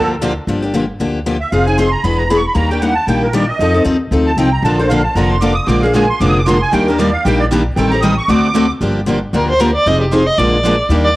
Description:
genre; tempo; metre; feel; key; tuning
acoustic string swing (jazz manouche); 230 BPM; 4/4; swing 56% on 8ths; G minor; A4 = 444 Hz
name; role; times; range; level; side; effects
musette accordion; second line; 0.0-8.7 s; Bb4 to Eb6; -18 LUFS; right 2 dB; cassette tape
picked steel-string acoustic guitar; accompaniment; 0.0-11.1 s; D3 to A4; -16 LUFS; left 2 dB; cassette tape
picked steel-string acoustic guitar; accompaniment; 0.0-0.3, 4.6-11.1 s; D3 to Bb4; -18 LUFS; right 2 dB; cassette tape
upright bass; bass; 0.0-11.2 s; E1 to F2; -18 LUFS; equal; none
warm violin; melody; 9.4-11.2 s; G4 to Eb5; -14 LUFS; equal; cassette tape
room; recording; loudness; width
moderate spring reverb, RT60 1.9 s, small room ambience; home recording on cassette; -12 LUFS; side -18 dB against mid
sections
0.5-8.8 A section; 8.8-11.2 A section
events
accordion solo 0.0-8.8; violin solo 8.8-11.2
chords
0.5 Gm7; 1.5 Fm7; 2.0 E7; 2.6 Ebmaj7; 3.6 F7; 4.6 Bbmaj7; 5.7 Bb7; 6.7 Ebmaj7; 7.8 Am7b5; 8.3 D7; 8.8 Gm7; 9.9 Fm7; 10.4 Bb7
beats
0.21 | 0.47 0.73 0.99 1.25 | 1.51 1.77 2.04 2.30 | 2.56 2.82 3.08 3.34 | 3.60 3.86 4.12 4.38 | 4.64 4.90 5.16 5.42 | 5.68 5.94 6.20 6.46 | 6.73 6.99 7.25 7.51 | 7.77 8.03 8.29 8.55 | 8.81 9.07 9.33 9.59 | 9.85 10.11 10.37 10.63 | 10.89 11.15

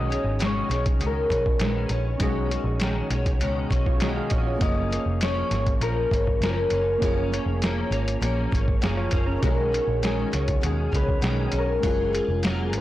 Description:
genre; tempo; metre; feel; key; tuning
indie pop, bedroom pop; 100 BPM; 4/4; straight; unclear; A4 = 438 Hz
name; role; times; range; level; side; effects
concert harp; melody; 0.0-12.8 s; G#4 to D#5; -28 LUFS; left 2 dB; wide subtle chorus, tape echo
picked steel-string acoustic guitar; accompaniment; 0.0-12.8 s; F#2 to G#4; -29 LUFS; left 2 dB; ensemble chorus, warbly pitch drift
soft electric-piano-like synth keys; accompaniment; 0.0-12.8 s; G#3 to E#5; -32 LUFS; right 3 dB; chorus
vintage muted picked electric bass; bass; 0.0-12.8 s; E#1 to D#2; -27 LUFS; equal; tube saturation
lo-fi sampler-style drum kit; drums; 0.1-12.8 s; hi-hat, kick drum, snare drum; -26 LUFS; equal; overdrive
room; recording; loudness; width
light reverb, digital ambience; blown-out, overdriven recording, overdrive; -22 LUFS; side -15 dB against mid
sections
0.0-12.8 A section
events
none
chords
0.0 B69; 4.6 F#maj7; 9.4 B69; 11.8 F#maj9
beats
0.41 1.01 1.61 | 2.21 2.81 3.41 4.01 | 4.61 5.21 5.82 6.42 | 7.02 7.62 8.22 8.82 | 9.43 10.03 10.63 11.23 | 11.83 12.43

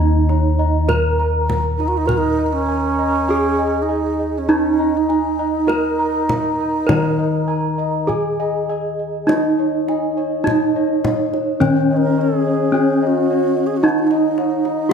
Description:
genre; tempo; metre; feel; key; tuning
Javanese gamelan; 50-57 BPM; 4/4; straight; Eb slendro; A4 = 441 Hz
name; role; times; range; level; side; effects
gamelan-type bronze metallophone; melody; 0.0-14.9 s; Db4-25c to Bb4; -19 LUFS; right 2 dB; none
gamelan-type bossed gongs; arpeggios; 0.0-14.9 s; Db5-25c to Bb5; -25 LUFS; left 10 dB; none
gamelan-type bronze metallophone; arpeggios; 0.0-14.9 s; Db5-25c to Bb5; -26 LUFS; right 3 dB; tape echo
gamelan-type bossed gongs; bass; 0.0-14.9 s; Eb2 to Gb4-45c; -22 LUFS; left 2 dB; none
kendang; percussion; 0.3-14.8 s; none; -24 LUFS; left 1 dB; none
breathy bright low xiao; second line; 1.8-14.9 s; Db4-31c to Db5; -21 LUFS; right 4 dB; none
room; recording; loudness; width
moderate recital hall reverb, RT60 1.5 s; none; -15 LUFS; side -6 dB against mid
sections
0.0-14.9 A section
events
none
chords
none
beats
0.89 2.09 3.29 | 4.49 5.69 6.89 8.09 | 9.29 10.47 11.62 12.74 | 13.84 14.91

